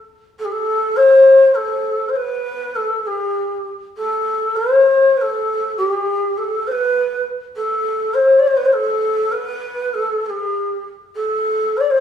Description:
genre	arabic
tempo	100 BPM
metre	3/4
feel	straight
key	A maqam rast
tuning	A4 = 436 Hz
part	breathy reedy low ney	solo	0.4-12.0 s	G4+48c to D5	-14 LUFS	left 1 dB	slapback echo
room	moderate recital hall reverb, RT60 1.5 s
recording	small room ambience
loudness	-14 LUFS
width	side -9 dB against mid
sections	0.4-12.0 A section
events	none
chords	none

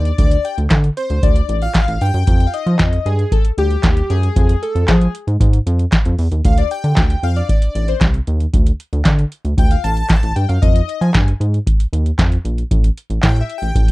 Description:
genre	early-eighties boogie funk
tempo	115 BPM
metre	4/4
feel	straight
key	unclear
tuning	A4 = 442 Hz
part	chorused polysynth	accompaniment	0.0-13.9 s	G4 to A5	-22 LUFS	left 4 dB	none
part	rubbery square bass	bass	0.0-13.9 s	A1 to F3	-16 LUFS	equal	none
part	booming analog drum machine	drums	0.1-13.9 s	handclaps, hi-hat, kick drum, snare drum	-14 LUFS	equal	none
room	little or no reverb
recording	dry, close 1970s-style studio recording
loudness	-13 LUFS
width	side -19 dB against mid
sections	0.0-13.9 A section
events	analog polysynth solo 0.0-13.9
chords	0.0 Dm7; 2.3 Fm9; 6.4 Dm; 10.6 Fm7; 12.7 A7(no3)

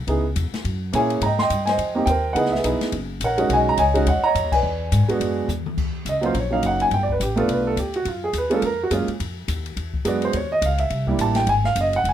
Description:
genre	jazz piano trio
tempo	210 BPM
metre	4/4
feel	swing 59% on 8ths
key	unclear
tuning	A4 = 440 Hz
part	upright bass	bass	0.0-12.1 s	E1 to Bb2	-24 LUFS	left 1 dB	none
part	warm upright piano	melody	0.1-12.1 s	Gb3 to C6	-20 LUFS	right 2 dB	none
part	open jazz drum kit	drums	0.1-12.1 s	crash cymbal, hi-hat, kick drum, ride cymbal, snare drum, toms	-31 LUFS	left 4 dB	none
room	light reverb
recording	minimal, uncompressed stereo recording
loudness	-19 LUFS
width	side -10 dB against mid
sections	0.0-5.8 A section; 5.8-12.1 B section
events	band accent 4.5; drum fill 5.5; upright piano solo 5.8-12.1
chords	0.1 Dbm7; 0.6 Gb9; 1.2 Abmaj9; 2.4 Dbm9; 2.9 Gb; 3.5 B69; 4.6 E9; 5.8 Ebm7; 6.9 G9; 8.1 Gbmaj9; 9.2 Ebsus2; 9.8 E9; 10.3 Dbmadd9; 10.9 C7; 11.5 Ebmadd11

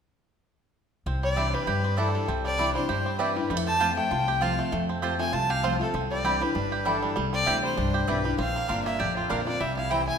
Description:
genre	bluegrass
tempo	197 BPM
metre	4/4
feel	swing 56% on 8ths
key	C major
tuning	A4 = 440 Hz
part	picked steel-string acoustic guitar	accompaniment	1.1-10.2 s	F2 to F4	-31 LUFS	left 3 dB	none
part	bluegrass banjo	arpeggios	1.1-10.2 s	E3 to G4	-30 LUFS	right 3 dB	none
part	upright bass	bass	1.1-10.1 s	G1 to G2	-32 LUFS	equal	none
part	clear fiddle	melody	1.2-10.2 s	F4 to A5	-29 LUFS	left 1 dB	none
part	mandolin	stabs	1.4-10.0 s	C4 to C6	-31 LUFS	right 2 dB	none
room	moderate concert hall reverb, RT60 2.2 s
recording	minimal, uncompressed stereo recording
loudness	-24 LUFS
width	side -7 dB against mid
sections	1.1-10.2 A section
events	none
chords	1.1 Cadd9; 3.5 F; 5.9 Cadd9; 8.4 Bbadd9; 9.6 C

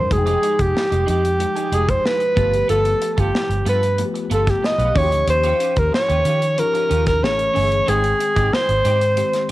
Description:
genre	polished 1980s jazz-funk pop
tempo	93 BPM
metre	4/4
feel	straight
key	F minor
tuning	A4 = 439 Hz
part	breathy alto saxophone	melody	0.0-9.5 s	G4 to Eb5	-18 LUFS	equal	cassette tape
part	mellow tine electric piano	accompaniment	0.0-9.5 s	Eb3 to G5	-28 LUFS	left 7 dB	medium stereo tremolo, ensemble chorus, cassette tape
part	vintage muted fingered electric bass	bass	0.0-9.2 s	F1 to Eb3	-21 LUFS	equal	none
part	clean electric guitar	riff	0.1-9.5 s	Ab3 to B4	-31 LUFS	right 8 dB	analog chorus, cassette tape
part	modern studio drum kit	drums	0.1-9.5 s	hi-hat, kick drum, snare drum	-24 LUFS	equal	cassette tape
room	moderate spring reverb, RT60 2.0 s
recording	home recording on cassette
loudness	-16 LUFS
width	side -16 dB against mid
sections	0.1-9.5 A section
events	none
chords	0.1 Fm9; 2.4 G9; 5.0 Eb9; 7.2 Amaj7; 7.9 Abmaj7

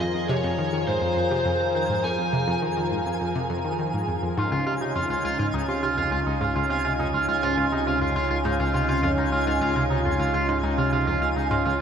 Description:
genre	ambient, sequencer-driven space music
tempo	103 BPM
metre	4/4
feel	straight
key	unclear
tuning	A4 = 440 Hz
part	lead guitar through a small cranked amp	melody	0.0-2.6 s	C5 to Ab5	-28 LUFS	left 1 dB	overdrive, tape echo
part	lush unison pad	sustained chords	0.0-11.8 s	Db3 to Bb4	-27 LUFS	equal	chorus
part	analog pluck	riff	0.0-11.7 s	Db2 to Eb3	-28 LUFS	equal	chorus, tape echo
part	warm sub bass	bass	0.0-11.8 s	Db2 to F2	-32 LUFS	equal	none
part	twinkling granular texture	texture	0.0-11.8 s	Ab5	-34 LUFS	right 3 dB	built-in reverb
part	electric guitar with an envelope filter	arpeggios	4.4-11.8 s	Eb4 to F4	-26 LUFS	moving between left 2 dB and right 5 dB	auto-pan, tape echo
room	wet huge ambient reverb, RT60 7.1 s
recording	none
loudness	-22 LUFS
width	side -7 dB against mid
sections	0.0-11.8 A section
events	fade-in on sub bass 0.0-11.8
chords	0.0 Fm; 4.4 Dbadd9

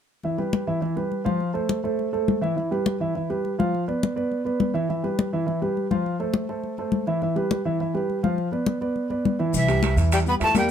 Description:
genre	Afro-Cuban jazz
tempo	206 BPM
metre	4/4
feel	straight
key	unclear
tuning	A4 = 440 Hz
part	dark concert grand piano	accompaniment	0.2-10.7 s	E3 to F5	-24 LUFS	right 1 dB	none
part	congas	percussion	0.2-10.7 s	none	-26 LUFS	left 5 dB	none
part	warm tenor saxophone	second line	9.5-10.7 s	E3 to B3	-28 LUFS	left 6 dB	none
part	upright bass	bass	9.5-10.7 s	C2 to E2	-22 LUFS	right 1 dB	none
part	maracas	percussion	9.5-10.7 s	none	-35 LUFS	left 7 dB	none
part	breathy bright jazz flute	melody	9.6-10.7 s	E5 to B5	-23 LUFS	equal	none
part	timbales	percussion	9.7-10.7 s	none	-30 LUFS	right 7 dB	none
room	light reverb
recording	close, detailed microphones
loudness	-22 LUFS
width	side -8 dB against mid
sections	0.2-9.5 A section; 9.5-10.7 B section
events	none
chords	0.2 Em; 1.4 Fmaj7; 2.6 Em; 3.7 Dm69; 4.9 Em; 6.0 Fmaj7; 7.2 Em; 8.4 Dm69; 9.5 C

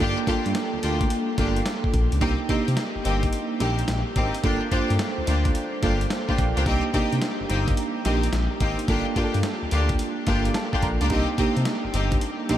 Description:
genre	R&B, new jack swing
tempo	108 BPM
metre	4/4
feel	swing 66% on 16ths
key	C dorian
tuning	A4 = 440 Hz
part	FM electric piano with tremolo	accompaniment	0.0-12.6 s	Bb3 to Bb5	-27 LUFS	right 3 dB	none
part	bright symphonic string section	stabs	0.0-12.6 s	Bb3 to G4	-28 LUFS	left 2 dB	diffuse ambient delay
part	smooth gliding synth bass	bass	0.0-12.6 s	G1 to C3	-25 LUFS	equal	none
part	dusty soul sampler-style drum kit	drums	0.3-12.6 s	hi-hat, kick drum, snare drum	-28 LUFS	equal	none
room	moderate huge ambient reverb, RT60 9.0 s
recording	dreamy mix soaked in reverb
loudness	-21 LUFS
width	side -12 dB against mid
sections	0.0-12.6 A section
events	FM electric piano fill 10.0-11.1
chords	0.0 Gm7; 2.2 Cm7; 4.4 Gm7; 6.7 Cm7; 8.9 Gm7; 11.1 Cm7

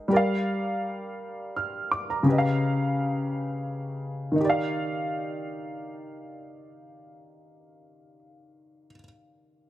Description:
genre	R&B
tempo	56 BPM (dotted quarters)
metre	6/8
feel	straight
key	Eb major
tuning	A4 = 441 Hz
part	dark grand piano	accompaniment	0.0-9.7 s	Db3 to F6	-25 LUFS	equal	plate reverb
room	light reverb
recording	none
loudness	-25 LUFS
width	side -14 dB against mid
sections	0.0-4.4 A section; 4.4-8.7 B section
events	none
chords	0.1 Gm7; 2.3 Db7#11; 4.4 Ebmaj7

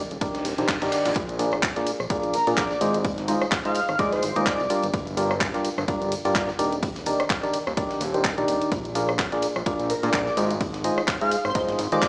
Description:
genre	piano house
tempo	127 BPM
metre	4/4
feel	swing 57% on 16ths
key	Bb mixolydian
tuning	A4 = 439 Hz
part	percussive organ stab	riff	0.0-12.1 s	Bb2 to Eb5	-25 LUFS	equal	chorus, sidechain pumping
part	fat analog bass	bass	0.1-12.0 s	Eb1 to Bb2	-29 LUFS	equal	sidechain pumping
part	house drum kit	drums	0.1-12.1 s	handclaps, hi-hat, rim click	-28 LUFS	equal	none
part	tambourine	percussion	0.1-12.1 s	none	-40 LUFS	equal	none
part	breakbeat sampler-style drum kit	drums	0.2-12.1 s	hi-hat, ride cymbal, snare drum	-37 LUFS	equal	high-pass filter on snare, sidechain pumping on cymbals, high-pass filter on cymbals, sidechain pumping on hats, high-pass filter on hats
part	electronic kick drum	drums	0.2-12.1 s	none	-28 LUFS	equal	none
part	reverse cymbal	sound effects	0.4-1.2 s	none	-35 LUFS	right 1 dB	none
part	airy dreamy lead	melody	2.3-4.8, 9.9-12.1 s	Bb4 to F5	-26 LUFS	equal	chorus, digital delay
room	moderate plate reverb, RT60 1.3 s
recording	played on a big sound system in a bare room, large studio reverb, small speaker sound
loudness	-22 LUFS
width	side -28 dB against mid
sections	0.0-12.1 A section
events	reverse cymbal 0.4-1.2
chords	0.0 Ebmaj7; 1.2 Bb7; 2.8 Ab6; 4.7 Gm7; 6.6 Ebmaj7; 8.7 Bb7; 10.4 Ab6

